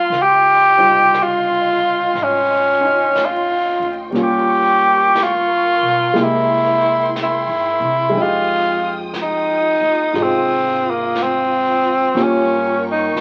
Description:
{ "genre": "jazz ballad", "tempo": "60 BPM", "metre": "4/4", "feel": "swing 67% on 8ths", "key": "F minor", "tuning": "A4 = 442 Hz", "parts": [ { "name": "bright tenor saxophone", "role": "melody", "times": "0.0-13.2 s", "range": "Bb3 to G4", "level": "-17 LUFS", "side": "equal", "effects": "none" }, { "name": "warm baby grand piano", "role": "accompaniment", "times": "0.0-13.2 s", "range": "Gb3 to C5", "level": "-25 LUFS", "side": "equal", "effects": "none" }, { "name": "warm symphonic string section", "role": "sustained chords", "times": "0.0-13.2 s", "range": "E4 to Eb6", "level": "-29 LUFS", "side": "equal", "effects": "none" }, { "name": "upright bass", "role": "bass", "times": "0.1-13.2 s", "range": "G1 to C3", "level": "-36 LUFS", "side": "equal", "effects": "none" }, { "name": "jazz brush drum kit", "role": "drums", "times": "0.1-13.2 s", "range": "brushed snare drum, hi-hat, snare drum", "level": "-35 LUFS", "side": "equal", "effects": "none" } ], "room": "moderate large studio reverb, RT60 0.9 s", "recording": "very old 78 rpm record, vinyl crackle", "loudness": "-16 LUFS", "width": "mono", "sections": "0.0-13.2 A section", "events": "none", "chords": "0.1 Dbmaj9#11; 4.1 Gm7b5; 6.1 C7b13; 8.1 Fm9; 12.1 Gm7b5", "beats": "| 0.10 1.12 2.14 3.14 | 4.14 5.14 6.15 7.14 | 8.14 9.13 10.14 11.14 | 12.15 13.15" }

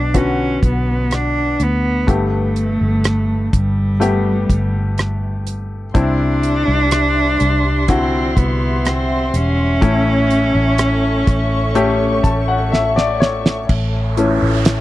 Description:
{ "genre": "pop ballad", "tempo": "62 BPM", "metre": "4/4", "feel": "straight", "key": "unclear", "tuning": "A4 = 441 Hz", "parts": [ { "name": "warm cello", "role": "melody", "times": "0.0-12.7 s", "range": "G3 to D4", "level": "-19 LUFS", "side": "right 1 dB", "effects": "none" }, { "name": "bright upright piano", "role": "accompaniment", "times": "0.0-14.8 s", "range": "G2 to A5", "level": "-21 LUFS", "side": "left 3 dB", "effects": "none" }, { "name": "vintage muted fingered electric bass", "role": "bass", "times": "0.0-14.8 s", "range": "E1 to D2", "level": "-19 LUFS", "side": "equal", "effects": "none" }, { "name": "damped 70s drum kit", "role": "drums", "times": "0.1-14.8 s", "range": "crash cymbal, hi-hat, kick drum, rim click, snare drum", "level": "-16 LUFS", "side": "equal", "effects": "none" }, { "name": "dark studio string section", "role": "sustained chords", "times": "5.9-14.8 s", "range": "G3 to C#6", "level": "-25 LUFS", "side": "equal", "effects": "none" }, { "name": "noise sweep", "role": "sound effects", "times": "13.9-14.8 s", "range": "none", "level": "-26 LUFS", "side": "right 7 dB", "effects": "none" } ], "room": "little or no reverb", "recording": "dry, close 1970s-style studio recording", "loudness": "-14 LUFS", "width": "side -15 dB against mid", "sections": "0.0-13.7 A section; 13.7-14.8 B section", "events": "upright piano fill 11.8-13.7; drum fill 12.7-13.7; upright piano solo 13.7-14.8; noise sweep 13.9-14.8", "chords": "0.0 Bm; 2.1 Gadd9; 6.0 Cadd9; 9.8 A", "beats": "0.14 1.11 | 2.08 3.05 4.02 4.98 | 5.95 6.92 7.89 8.85 | 9.82 10.79 11.76 12.72 | 13.69 14.66" }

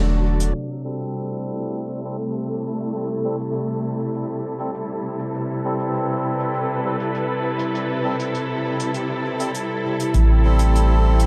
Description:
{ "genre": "ambient dub", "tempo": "100 BPM", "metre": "4/4", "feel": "straight", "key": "A dorian", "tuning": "A4 = 441 Hz", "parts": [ { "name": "dark symphonic string section", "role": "sustained chords", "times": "0.0-11.3 s", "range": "C3 to B4", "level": "-26 LUFS", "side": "equal", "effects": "low-pass filter" }, { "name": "soft dub sub bass", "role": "bass", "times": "0.0-0.5, 10.1-11.3 s", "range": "E1 to A1", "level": "-18 LUFS", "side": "equal", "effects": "tube saturation" }, { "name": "drifting glass-harmonics texture", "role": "texture", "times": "0.0-0.6 s", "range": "D4 to D5", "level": "-38 LUFS", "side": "equal", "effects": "chorus, built-in reverb" }, { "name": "hi-hat", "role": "drums", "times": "0.4-11.3 s", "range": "none", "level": "-38 LUFS", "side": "equal", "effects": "dub echo" }, { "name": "melodica", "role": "stabs", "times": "0.8-11.3 s", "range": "G3 to A4", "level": "-31 LUFS", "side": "equal", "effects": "low-pass filter, dub echo" }, { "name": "electronic kick drum", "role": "drums", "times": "10.1-10.3 s", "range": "none", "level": "-24 LUFS", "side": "equal", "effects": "none" } ], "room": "light reverb, studio reverb", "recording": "echo-heavy mix, low-pass filter", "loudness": "-23 LUFS", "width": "mono", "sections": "0.5-10.1 A section; 10.1-11.3 B section", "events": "filter sweep on string section 0.5-10.1; filter sweep on melodica 0.5-10.1; filter sweep 0.5-10.1", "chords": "0.0 D; 0.5 Am7", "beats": "| 0.54 1.14 1.74 2.34 | 2.94 3.54 4.14 4.74 | 5.34 5.94 6.54 7.14 | 7.74 8.34 8.94 9.54 | 10.14 10.74" }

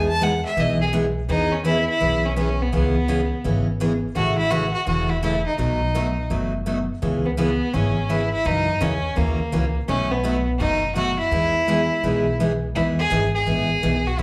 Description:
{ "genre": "country, western swing", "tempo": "167 BPM", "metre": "4/4", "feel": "swing 65% on 8ths", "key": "E major", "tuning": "A4 = 438 Hz", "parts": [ { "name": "clear fiddle", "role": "melody", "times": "0.0-14.2 s", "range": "A#3 to A5", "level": "-26 LUFS", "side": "equal", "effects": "slapback echo" }, { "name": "picked steel-string acoustic guitar", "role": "accompaniment", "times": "0.0-14.2 s", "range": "B2 to A4", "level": "-26 LUFS", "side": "equal", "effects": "slapback echo" }, { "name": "upright bass", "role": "bass", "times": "0.0-14.2 s", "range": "E1 to F#2", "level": "-28 LUFS", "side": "equal", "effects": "none" } ], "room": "moderate club reverb, RT60 0.8 s", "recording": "live gig heard through the venue's PA, club reverb", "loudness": "-22 LUFS", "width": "mono", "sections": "0.0-1.3 A section; 1.3-14.2 B section", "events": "fiddle solo 0.0-1.3", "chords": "0.0 Emaj7; 1.3 E6; 2.7 C#m7; 4.2 A; 5.6 B7; 7.0 C#m7; 8.4 F#7; 9.9 B7; 11.3 Emaj7", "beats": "0.21 0.57 0.93 | 1.29 1.65 2.00 2.36 | 2.72 3.08 3.44 3.79 | 4.15 4.51 4.87 5.23 | 5.59 5.94 6.30 6.66 | 7.02 7.38 7.73 8.09 | 8.45 8.81 9.16 9.52 | 9.88 10.24 10.60 10.96 | 11.31 11.67 12.03 12.39 | 12.75 13.11 13.47 13.83 | 14.19" }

